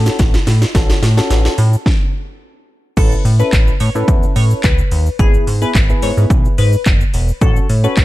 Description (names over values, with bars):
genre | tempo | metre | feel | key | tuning
dance-pop | 108 BPM | 4/4 | straight | unclear | A4 = 440 Hz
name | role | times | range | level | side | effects
soft electric-piano-like synth keys | accompaniment | 0.0-8.0 s | B3 to C#5 | -22 LUFS | left 1 dB | chorus, tremolo, sidechain pumping, low-pass filter
chorused synth bass | bass | 0.0-8.0 s | E1 to A2 | -14 LUFS | equal | sidechain pumping
house drum kit | drums | 0.1-8.0 s | crash cymbal, handclaps, hi-hat, kick drum, shaker, snare drum | -14 LUFS | equal | overdrive
glassy wavetable pluck | melody | 3.0-7.9 s | G#4 to C#5 | -23 LUFS | left 4 dB | chorus, sidechain pumping, ping-pong delay
room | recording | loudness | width
little or no reverb | dark, warm production | -11 LUFS | side -16 dB against mid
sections
0.0-3.0 A section; 3.0-8.0 B section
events
build-up 0.0-3.0; drum fill 0.0-1.9; filter sweep on synth keys 0.0-3.0; stop 1.9-3.0; drop 3.0-8.0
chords
0.0 F#m/A; 3.0 Aadd9; 5.2 E/G#; 7.4 F#m